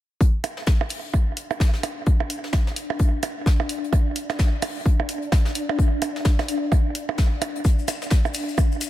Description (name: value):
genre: minimal techno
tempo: 129 BPM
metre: 4/4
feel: swing 60% on 16ths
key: unclear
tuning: A4 = 440 Hz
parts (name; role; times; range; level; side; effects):
- electronic kick drum; drums; 0.2-8.7 s; none; -18 LUFS; equal; none
- soft brush drum kit; drums; 0.2-8.9 s; hi-hat, snare drum; -34 LUFS; left 3 dB; sidechain pumping on hats, high-pass filter on hats, high-pass filter on snare, high-pass filter on room
- swarming drone; texture; 1.8-8.9 s; D4; -31 LUFS; left 2 dB; built-in reverb, sidechain pumping
- electronic hi-hat; drums; 0.4-8.9 s; none; -32 LUFS; equal; none
- percussion blips; percussion; 0.4-8.7 s; none; -30 LUFS; right 8 dB; analog delay
- maracas; percussion; 7.6-8.9 s; none; -34 LUFS; left 8 dB; none
room: light reverb, small room ambience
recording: none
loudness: -20 LUFS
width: side -14 dB against mid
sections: 0.2-8.9 A section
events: none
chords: none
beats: | 0.21 0.67 1.14 1.60 | 2.07 2.53 3.00 3.46 | 3.93 4.39 4.86 5.32 | 5.79 6.25 6.72 7.18 | 7.65 8.11 8.58